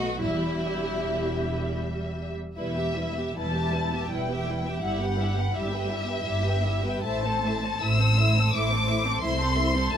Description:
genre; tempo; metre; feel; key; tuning
classical, slow romantic movement for string orchestra; 74-88 BPM; 3/4; rubato; E minor; A4 = 439 Hz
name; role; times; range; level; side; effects
rich studio violin section; melody; 0.0-10.0 s; D#5 to E6; -30 LUFS; left 4 dB; none
clear studio violin section; second line; 0.0-10.0 s; E4 to G5; -32 LUFS; equal; none
warm studio viola section; accompaniment; 0.0-10.0 s; G3 to G4; -32 LUFS; right 1 dB; none
dark studio cello section; bass; 0.0-10.0 s; C2 to B2; -30 LUFS; right 1 dB; none
warm studio double bass section; bass; 0.0-10.0 s; E1 to C2; -30 LUFS; right 1 dB; none
room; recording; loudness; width
light reverb; minimal, uncompressed stereo recording; -24 LUFS; side -9 dB against mid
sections
0.0-2.6 A section; 2.6-10.0 B section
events
none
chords
0.2 Em; 4.8 Em/G; 7.0 Am; 9.2 Am/C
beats
| 0.22 0.99 1.78 | 2.57 3.36 4.10 | 4.83 5.54 6.26 | 7.05 7.83 8.53 | 9.22 9.92

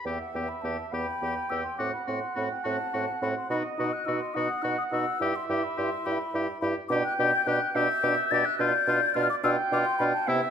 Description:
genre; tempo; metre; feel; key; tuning
quick classical-period movement for wind quintet; 70 BPM (dotted quarters); 6/8; rubato; E minor, G major from 6.9 s; A4 = 439 Hz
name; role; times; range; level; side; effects
mellow hollow concert flute; melody; 0.0-10.5 s; F#5 to A6; -30 LUFS; left 7 dB; none
clear oboe; second line; 0.0-10.4 s; E4 to G4; -33 LUFS; left 3 dB; none
warm clarinet; accompaniment; 0.0-10.5 s; D5 to G5; -32 LUFS; right 4 dB; none
mellow bassoon; bass; 0.0-10.4 s; E2 to C3; -32 LUFS; right 3 dB; none
warm French horn; accompaniment; 0.1-10.4 s; B3 to E4; -34 LUFS; right 1 dB; none
room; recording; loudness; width
moderate recital hall reverb, RT60 1.7 s; minimal, uncompressed stereo recording; -25 LUFS; side -8 dB against mid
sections
0.0-10.5 A section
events
none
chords
0.0 Em; 1.8 F#dim/A; 3.5 B; 5.2 Em/G; 6.9 G/B; 8.6 G7/B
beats
| 0.05 0.93 | 1.79 2.65 | 3.50 4.35 | 5.21 6.06 | 6.90 7.75 | 8.60 9.44 | 10.29

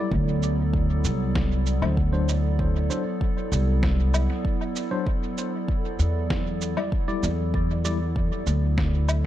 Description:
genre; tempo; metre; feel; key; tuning
ambient dub; 97 BPM; 4/4; straight; unclear; A4 = 440 Hz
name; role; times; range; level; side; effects
warbly tape-like pad; sustained chords; 0.0-9.3 s; F#3 to D5; -30 LUFS; right 1 dB; chorus, built-in reverb
tine electric piano; stabs; 0.0-8.0 s; F#3 to D5; -32 LUFS; left 4 dB; overdrive, fast stereo tremolo, dub echo
upright bass; bass; 0.1-9.3 s; C2 to E2; -23 LUFS; equal; tube saturation
electronic kick drum; drums; 0.1-8.9 s; none; -27 LUFS; equal; none
electronic cabasa, snare drum and woodblock; drums; 0.4-9.2 s; none; -33 LUFS; equal; dub echo
room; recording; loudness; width
little or no reverb; dark, warm production; -22 LUFS; side -12 dB against mid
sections
0.0-9.3 A section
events
none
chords
0.1 D7; 5.1 E7(no3)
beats
| 0.12 0.74 1.35 1.97 | 2.59 3.21 3.83 4.45 | 5.07 5.68 6.30 6.92 | 7.54 8.16 8.78

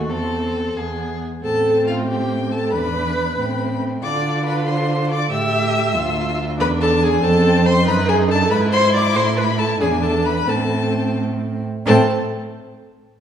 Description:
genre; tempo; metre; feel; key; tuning
quick classical-period movement for string quartet; 86-95 BPM (dotted quarters); 6/8; straight; A minor; A4 = 440 Hz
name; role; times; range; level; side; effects
warm violin; second line; 0.0-12.1 s; C4 to A4; -24 LUFS; left 2 dB; none
rich viola; accompaniment; 0.0-12.1 s; A3 to E5; -21 LUFS; right 1 dB; none
rich cello; bass; 0.0-12.1 s; D2 to D3; -21 LUFS; right 3 dB; none
warm violin; melody; 0.1-12.1 s; F5 to E6; -24 LUFS; left 5 dB; none
room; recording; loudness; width
wet scoring stage reverb, RT60 1.7 s; small room reverb; -16 LUFS; side -9 dB against mid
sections
0.0-1.4 A section; 1.4-11.9 B section; 11.9-13.2 C section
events
none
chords
0.1 Am/E; 0.8 E; 1.4 Am; 2.7 E5; 3.4 Am; 4.0 Dm; 5.3 A5; 6.0 Dm; 6.6 E7; 7.2 F; 7.9 F#m69; 8.5 E/G#; 9.2 A5; 9.8 E7; 10.5 Am; 11.9 N.C.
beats
| 0.09 0.77 | 1.43 2.09 | 2.74 3.38 | 4.03 4.68 | 5.32 5.96 | 6.59 7.23 | 7.87 8.51 | 9.15 9.81 | 10.48 11.17 | 11.86

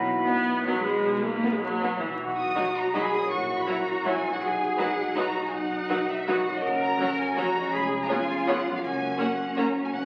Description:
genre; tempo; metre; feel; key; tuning
classical; 162 BPM; 3/4; uneven beats, rubato; B major; A4 = 437 Hz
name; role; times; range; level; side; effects
clear oboe; second line; 0.0-1.8 s; B4; -38 LUFS; equal; none
concert flute; second line; 0.0-1.8 s; B5; -36 LUFS; equal; none
mellow French horn section; sustained chords; 0.0-10.1 s; F#3 to E4; -36 LUFS; equal; none
concert harp; arpeggios; 0.0-10.1 s; E#2 to A#4; -35 LUFS; equal; none
clear chamber double bass section; bass; 0.0-10.1 s; E#1 to B1; -47 LUFS; equal; none
rich symphonic cello section; bass; 0.0-10.1 s; B2 to A#4; -33 LUFS; equal; none
clear chamber violin section; melody; 0.3-10.1 s; D#4 to D#6; -34 LUFS; equal; none
rich chamber violin section; second line; 0.3-9.6 s; B3 to C#5; -36 LUFS; equal; none
rich chamber viola section; accompaniment; 0.3-9.7 s; E3 to E4; -32 LUFS; equal; none
room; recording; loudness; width
wet recital hall reverb, RT60 1.4 s; very old 78 rpm record, vinyl crackle; -26 LUFS; mono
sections
0.0-2.2 A section; 2.2-10.1 A section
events
none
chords
0.0 B; 3.3 F#7/A#; 4.4 B; 6.6 F#; 7.7 C#7/E#; 8.8 F#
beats
0.26 0.67 | 1.04 1.43 1.83 | 2.20 2.57 2.95 | 3.31 3.68 4.06 | 4.42 4.79 5.17 | 5.53 5.90 6.28 | 6.63 7.00 7.38 | 7.73 8.10 8.48 | 8.83 9.20 9.57 | 9.93

